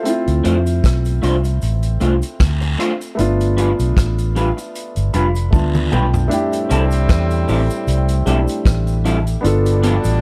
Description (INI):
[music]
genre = lovers rock reggae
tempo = 77 BPM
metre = 4/4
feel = swing 55% on 16ths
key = C major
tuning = A4 = 440 Hz
[part]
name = warm concert grand piano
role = accompaniment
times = 0.0-10.2 s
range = A3 to B5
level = -24 LUFS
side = equal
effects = none
[part]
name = vintage drum kit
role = drums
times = 0.1-10.2 s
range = hi-hat, kick drum, rim click, toms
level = -21 LUFS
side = equal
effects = none
[part]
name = cabasa and guiro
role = percussion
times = 0.1-10.2 s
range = none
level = -38 LUFS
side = equal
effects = slapback echo
[part]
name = vintage muted fingered electric bass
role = bass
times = 0.3-10.2 s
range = F1 to F2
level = -19 LUFS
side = equal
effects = none
[part]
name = electric guitar through a small old amp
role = stabs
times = 0.4-10.0 s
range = F3 to C5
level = -23 LUFS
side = equal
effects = phaser
[part]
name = warm horn section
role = second line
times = 6.3-10.2 s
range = A2 to D4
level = -27 LUFS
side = equal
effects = none
[sound]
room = small room ambience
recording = dry, close 1970s-style studio recording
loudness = -17 LUFS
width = mono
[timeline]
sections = 0.0-6.3 A section; 6.3-10.2 B section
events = grand piano fill 4.7-6.3; drum fill 5.5-6.3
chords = 0.1 Dm7; 3.2 G7; 6.3 C6; 9.4 G7